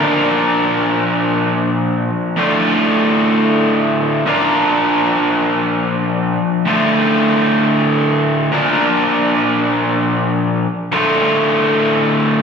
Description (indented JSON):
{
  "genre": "rock",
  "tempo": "free time",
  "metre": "none",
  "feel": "none",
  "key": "unclear",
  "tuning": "A4 = 441 Hz",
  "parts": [
    { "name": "raw garage guitar", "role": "solo", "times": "0.0-12.4 s", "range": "D2 to Bb4", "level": "-13 LUFS", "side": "equal", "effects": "overdrive, slapback echo" }
  ],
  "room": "light reverb",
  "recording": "live gig heard through the venue's PA, recital hall reverb",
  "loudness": "-13 LUFS",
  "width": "side -6 dB against mid",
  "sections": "0.0-12.4 A section",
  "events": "none",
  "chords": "0.0 Bb; 2.4 Dm; 4.2 Bb; 6.7 Dm; 8.5 Bb; 10.9 Dm",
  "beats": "free time"
}